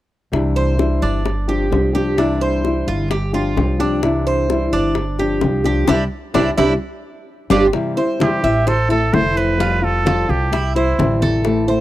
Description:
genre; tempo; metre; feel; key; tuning
latin, Cuban son and guajira; 130 BPM; 4/4; straight; C major; A4 = 441 Hz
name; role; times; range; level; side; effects
flamenco guitar; accompaniment; 0.3-11.8 s; C3 to G4; -20 LUFS; left 2 dB; none
upright bass; bass; 0.3-11.8 s; F1 to C2; -20 LUFS; right 1 dB; none
bongos; percussion; 0.3-11.7 s; none; -23 LUFS; left 6 dB; none
Cuban tres; arpeggios; 0.6-11.8 s; D4 to E5; -21 LUFS; right 3 dB; none
congas; percussion; 7.7-11.8 s; none; -23 LUFS; equal; none
trumpet with straight mute; melody; 8.2-11.2 s; E4 to C5; -21 LUFS; right 3 dB; none
room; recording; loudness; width
small room ambience; dry, close 1970s-style studio recording; -15 LUFS; side -14 dB against mid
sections
0.3-7.7 A section; 7.7-11.8 B section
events
band accent 5.9-7.7; drum fill 7.0-7.7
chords
0.3 Cadd9; 1.3 G7sus4; 2.2 Cadd9; 3.1 G7sus4; 4.0 Cadd9; 5.0 G7sus4; 5.9 Cadd9; 6.8 G7sus4; 7.7 C; 8.7 Am; 9.6 Fadd9; 10.5 C

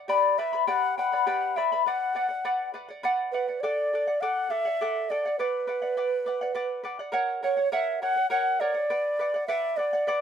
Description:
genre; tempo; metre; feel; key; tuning
andean folk, Andean ensemble; 68 BPM (dotted quarters); 6/8; straight; B minor; A4 = 441 Hz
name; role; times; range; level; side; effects
charango; accompaniment; 0.0-10.2 s; G4 to B5; -29 LUFS; left 3 dB; none
breathy reedy alto ocarina; melody; 0.1-10.2 s; B4 to F#5; -26 LUFS; right 1 dB; none
room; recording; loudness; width
light reverb; minimal, uncompressed stereo recording; -24 LUFS; side -8 dB against mid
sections
0.0-7.1 A section; 7.1-10.2 B section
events
none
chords
0.1 G; 1.9 Bm; 3.6 D; 5.4 Bm; 7.1 F#; 8.9 Bm

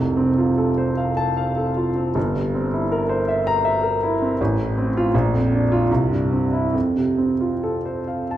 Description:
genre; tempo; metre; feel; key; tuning
classical, romantic character piece for solo piano; 67-82 BPM; 3/4; rubato; F major; A4 = 438 Hz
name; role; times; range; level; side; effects
warm concert grand piano; solo; 0.0-8.4 s; F1 to Bb5; -18 LUFS; equal; none
room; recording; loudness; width
wet recital hall reverb, RT60 1.3 s; dark, warm production; -18 LUFS; side -12 dB against mid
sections
0.0-8.4 A section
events
none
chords
0.0 F; 2.2 C7/G; 4.4 F/A; 5.1 Bb; 5.9 C; 6.7 F

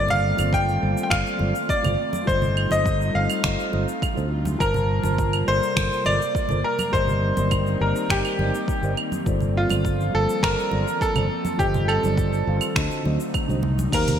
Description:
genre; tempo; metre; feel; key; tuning
sunset chillout; 103 BPM; 4/4; straight; unclear; A4 = 441 Hz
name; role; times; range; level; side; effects
bright concert grand piano; melody; 0.0-14.2 s; F4 to G5; -24 LUFS; equal; digital delay
mellow tine electric piano; accompaniment; 0.0-14.2 s; D3 to A5; -29 LUFS; moving between left 4 dB and right 4 dB; auto-pan, digital delay
airy breathy pad; sustained chords; 0.0-14.2 s; C3 to F4; -31 LUFS; equal; chorus
fingered electric bass; bass; 0.0-14.2 s; G1 to Eb2; -24 LUFS; equal; none
deep house drum kit; drums; 0.1-14.2 s; claves, crash cymbal, finger snaps, hi-hat, shaker; -29 LUFS; right 2 dB; overdrive, gated reverb
congas; percussion; 0.1-14.2 s; none; -31 LUFS; right 3 dB; none
electronic kick drum; drums; 0.5-14.0 s; none; -26 LUFS; equal; overdrive
room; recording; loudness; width
moderate plate reverb, RT60 2.4 s; bright 1980s-style digital production; -20 LUFS; side -8 dB against mid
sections
0.0-13.9 A section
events
none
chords
0.0 Bbmaj9/G; 2.3 F9/G; 4.6 Gm11; 6.9 Cm9/G; 9.3 Bbmaj9/G; 11.6 F9/G; 12.8 D7b9

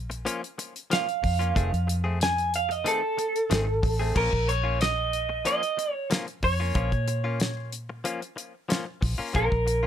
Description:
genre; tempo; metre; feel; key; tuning
straight-eighth soul blues; 92 BPM; 4/4; straight; Bb minor; A4 = 440 Hz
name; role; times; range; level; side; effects
vintage muted fingered electric bass; bass; 0.0-9.9 s; F1 to Bb2; -28 LUFS; equal; none
direct-recorded clean electric guitar; stabs; 0.1-9.9 s; Eb3 to G#4; -34 LUFS; left 4 dB; tape echo
damped 70s drum kit; drums; 0.1-9.8 s; crash cymbal, hi-hat, kick drum, snare drum; -29 LUFS; left 1 dB; none
electric guitar through a small old amp; melody; 0.9-9.9 s; A4 to G#5; -26 LUFS; right 2 dB; none
room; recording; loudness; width
light reverb; none; -24 LUFS; side -9 dB against mid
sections
0.0-4.2 A section; 4.2-9.9 B section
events
clean electric guitar solo 0.0-4.2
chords
0.0 Bbm; 1.6 F7#9; 4.2 Bbm

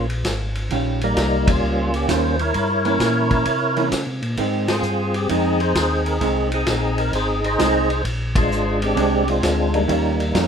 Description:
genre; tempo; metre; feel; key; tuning
soul jazz organ trio; 131 BPM; 4/4; swing 67% on 8ths; Eb mixolydian; A4 = 440 Hz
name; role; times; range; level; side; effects
percussive tonewheel organ; melody; 0.0-10.5 s; G3 to Eb5; -20 LUFS; equal; slow rotary speaker, overdrive, chorus vibrato
mellow tonewheel organ; bass; 0.0-10.5 s; Ab1 to Db3; -23 LUFS; equal; slow rotary speaker
vintage drum kit; drums; 0.1-10.5 s; hi-hat, kick drum, ride cymbal, snare drum; -25 LUFS; equal; none
vintage hollow-body jazz guitar; accompaniment; 0.7-10.5 s; Eb3 to F4; -23 LUFS; right 4 dB; none
room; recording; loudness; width
light reverb; minimal, uncompressed stereo recording; -17 LUFS; side -7 dB against mid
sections
0.0-10.5 A section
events
band accent 1.4, 4.6, 8.3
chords
0.0 Eb9; 2.5 C7b9; 4.4 Fm7; 8.0 Bb9; 9.9 Eb9

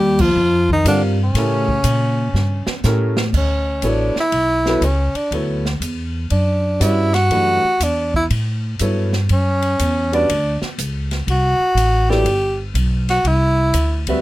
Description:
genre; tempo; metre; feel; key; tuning
modal jazz; 121 BPM; 4/4; swing 67% on 8ths; D major from 3.3 s; A4 = 440 Hz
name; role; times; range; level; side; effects
breathy tenor saxophone; melody; 0.0-14.1 s; C#4 to G4; -18 LUFS; equal; none
mellow bass clarinet; second line; 0.0-2.8 s; C#3 to G3; -23 LUFS; left 4 dB; none
upright bass; bass; 0.0-14.2 s; G1 to Bb2; -18 LUFS; equal; none
open jazz drum kit; drums; 0.2-14.2 s; crash cymbal, hi-hat, kick drum, ride cymbal, snare drum; -27 LUFS; equal; none
clear upright piano; accompaniment; 0.9-14.2 s; E3 to F5; -21 LUFS; equal; none
room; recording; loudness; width
little or no reverb; close, detailed microphones; -15 LUFS; side -16 dB against mid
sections
0.0-3.3 A section; 3.3-14.2 B section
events
band accent 0.1; drum fill 2.4-3.3; tenor saxophone solo 3.3-14.2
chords
0.0 F9sus4; 1.4 A7b9; 3.3 Dmaj9; 11.3 Cmaj9

